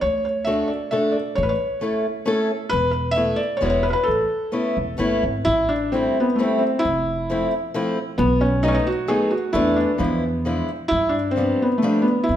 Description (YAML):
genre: musette waltz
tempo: 132 BPM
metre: 3/4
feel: rubato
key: A major, A minor from 5.5 s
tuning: A4 = 440 Hz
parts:
  - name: felt-muted upright piano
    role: melody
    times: 0.0-12.4 s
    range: A3 to E5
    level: -21 LUFS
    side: equal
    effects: none
  - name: upright bass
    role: bass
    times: 0.0-12.4 s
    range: E1 to G2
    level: -26 LUFS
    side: right 1 dB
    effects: none
  - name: fingerpicked acoustic archtop guitar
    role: accompaniment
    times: 0.5-12.1 s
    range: E3 to A4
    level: -23 LUFS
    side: left 1 dB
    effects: none
room: wet recital hall reverb, RT60 1.4 s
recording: minimal, uncompressed stereo recording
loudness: -19 LUFS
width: side -11 dB against mid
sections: 0.0-5.5 A section; 5.5-12.4 B section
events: none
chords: 0.0 D; 1.4 A; 2.7 Esus4; 3.6 Eadd9; 4.1 Aadd9; 5.5 Am7; 6.8 Fmaj7; 8.2 B7; 9.5 E7sus4; 10.0 E7b9; 10.9 G7